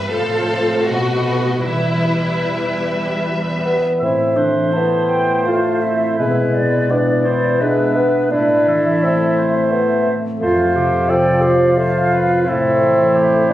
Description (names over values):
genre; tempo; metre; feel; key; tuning
classical; 75-88 BPM; 3/4; rubato; E minor, A minor from 4.0 s; A4 = 443 Hz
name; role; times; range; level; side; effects
warm symphonic violin section; melody; 0.0-3.8 s; D#5 to F5; -26 LUFS; equal; none
rich studio violin section; second line; 0.0-3.2 s; E4 to B4; -21 LUFS; left 1 dB; none
warm symphonic viola section; accompaniment; 0.0-3.8 s; F3 to C5; -24 LUFS; equal; none
concert harp; arpeggios; 0.0-13.5 s; F2 to D5; -23 LUFS; equal; none
rich symphonic cello section; bass; 0.0-3.8 s; E2 to B2; -25 LUFS; right 2 dB; none
dark bassoon; accompaniment; 3.7-13.5 s; E3 to D4; -17 LUFS; equal; none
clear clarinet; second line; 4.0-13.5 s; D4 to A4; -22 LUFS; right 1 dB; none
concert flute; second line; 4.0-13.5 s; D5 to A5; -22 LUFS; left 1 dB; none
warm oboe; second line; 4.0-13.5 s; G4 to E5; -25 LUFS; right 1 dB; none
mellow French horn section; sustained chords; 4.0-13.5 s; F3 to B3; -21 LUFS; left 1 dB; none
room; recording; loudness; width
moderate recital hall reverb, RT60 1.4 s; recorded on a phone in the room, club reverb, compression; -14 LUFS; side -13 dB against mid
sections
0.0-4.0 A section; 4.0-13.5 B section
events
none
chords
0.1 F/A; 0.9 B7; 1.7 Em; 4.0 Am; 6.2 E7/B; 8.3 Am; 10.4 F; 12.5 Am7